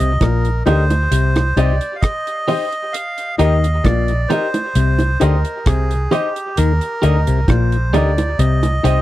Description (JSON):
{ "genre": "roots reggae", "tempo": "66 BPM", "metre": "4/4", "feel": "straight", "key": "Eb major", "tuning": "A4 = 440 Hz", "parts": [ { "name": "melodica", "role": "melody", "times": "0.0-9.0 s", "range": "G4 to F5", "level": "-22 LUFS", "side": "right 2 dB", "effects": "dub echo" }, { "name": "clav", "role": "riff", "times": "0.0-9.0 s", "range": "Bb2 to Eb3", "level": "-22 LUFS", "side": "left 6 dB", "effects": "none" }, { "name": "vintage muted fingered electric bass", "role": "bass", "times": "0.0-9.0 s", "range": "Bb1 to Eb2", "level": "-16 LUFS", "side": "equal", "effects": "none" }, { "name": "deep reggae drum kit", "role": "drums", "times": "0.0-9.0 s", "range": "hi-hat, kick drum, rim click", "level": "-21 LUFS", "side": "equal", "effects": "none" }, { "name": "bongos", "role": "percussion", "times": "0.2-8.8 s", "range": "none", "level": "-21 LUFS", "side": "right 3 dB", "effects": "none" }, { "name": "clean electric guitar", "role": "accompaniment", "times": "0.7-9.0 s", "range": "G4 to Eb5", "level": "-24 LUFS", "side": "right 1 dB", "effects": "dub echo" }, { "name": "warm upright piano", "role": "stabs", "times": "0.7-9.0 s", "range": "Eb4 to Eb5", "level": "-21 LUFS", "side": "left 5 dB", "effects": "none" } ], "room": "little or no reverb", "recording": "dry, close 1970s-style studio recording", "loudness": "-14 LUFS", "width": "side -15 dB against mid", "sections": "0.0-9.0 A section", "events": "none", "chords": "0.0 Eb; 1.1 Cm; 2.9 Eb; 4.8 Cm; 6.6 Eb; 8.4 Cm" }